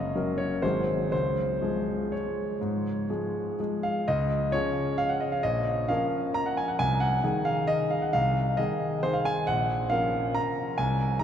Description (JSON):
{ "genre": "classical, piano waltz", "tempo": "118-147 BPM", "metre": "3/4", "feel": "rubato", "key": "Db major", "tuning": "A4 = 440 Hz", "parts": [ { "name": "clear concert grand piano", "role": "solo", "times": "0.0-11.2 s", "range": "Gb1 to Bb5", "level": "-25 LUFS", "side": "equal", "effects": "none" } ], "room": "wet cathedral reverb, RT60 6.6 s", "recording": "in a vast, echoing space", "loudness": "-25 LUFS", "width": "side -9 dB against mid", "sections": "0.0-4.1 A section; 4.1-11.2 A section", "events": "none", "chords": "0.0 Ebm7/Gb; 0.6 Ab7; 1.1 Db; 5.4 Bbm; 6.8 Ab/C; 9.5 Bbm" }